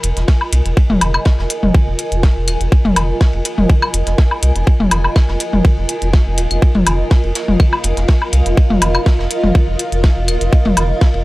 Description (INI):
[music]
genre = minimal techno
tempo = 123 BPM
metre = 4/4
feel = swing 53% on 16ths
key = F minor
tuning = A4 = 440 Hz
[part]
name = rubbery square bass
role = bass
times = 0.0-11.2 s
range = Eb1 to C2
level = -17 LUFS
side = equal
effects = sidechain pumping
[part]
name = electronic hi-hat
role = drums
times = 0.0-10.9 s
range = none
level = -20 LUFS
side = equal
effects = none
[part]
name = open jazz drum kit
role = drums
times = 0.0-11.2 s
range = ride cymbal, snare drum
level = -31 LUFS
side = left 2 dB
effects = sidechain pumping on cymbals, high-pass filter on cymbals, high-pass filter on snare, high-pass filter on room
[part]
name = granular cloud pad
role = texture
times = 0.0-11.2 s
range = F4 to Ab5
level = -22 LUFS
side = right 1 dB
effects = built-in reverb, sidechain pumping
[part]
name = electronic kick drum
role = drums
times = 0.3-11.1 s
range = none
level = -11 LUFS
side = equal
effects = none
[part]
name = electronic woodblock, toms and claves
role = percussion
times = 0.4-10.9 s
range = none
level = -17 LUFS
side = left 1 dB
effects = none
[sound]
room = little or no reverb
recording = dry, gritty hardware recording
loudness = -12 LUFS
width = side -19 dB against mid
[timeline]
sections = 0.0-11.2 A section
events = none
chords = 0.0 Fm7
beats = 0.28 | 0.77 1.26 1.74 2.23 | 2.72 3.21 3.70 4.18 | 4.67 5.16 5.65 6.13 | 6.62 7.11 7.60 8.09 | 8.57 9.06 9.55 10.04 | 10.53 11.01